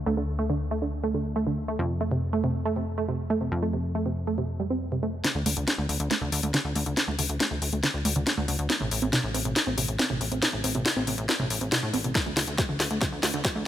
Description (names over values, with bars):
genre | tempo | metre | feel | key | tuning
uplifting trance | 139 BPM | 4/4 | straight | D minor | A4 = 440 Hz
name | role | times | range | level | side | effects
plucky analog bass | bass | 0.0-13.6 s | A1 to A2 | -30 LUFS | left 1 dB | sidechain pumping
wide unison pluck | arpeggios | 0.1-13.6 s | C3 to C4 | -29 LUFS | right 2 dB | sidechain pumping, digital delay
house drum kit | drums | 5.2-13.5 s | hi-hat, snare drum | -26 LUFS | left 1 dB | overdrive, small room ambience
electronic kick drum | drums | 12.2-13.5 s | none | -29 LUFS | equal | overdrive, small room ambience
room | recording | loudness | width
moderate lush hall reverb, RT60 1.8 s, digital ambience | high-pass filter, low-pass filter | -24 LUFS | side -11 dB against mid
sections
0.0-5.2 A section; 5.2-13.7 B section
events
filter sweep 0.0-5.2; build-up 5.2-13.7; drum fill 5.2-13.7; filter sweep on synth pluck 5.2-13.7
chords
0.0 D5; 1.8 N.C.; 5.2 D5; 8.7 Am; 12.2 D5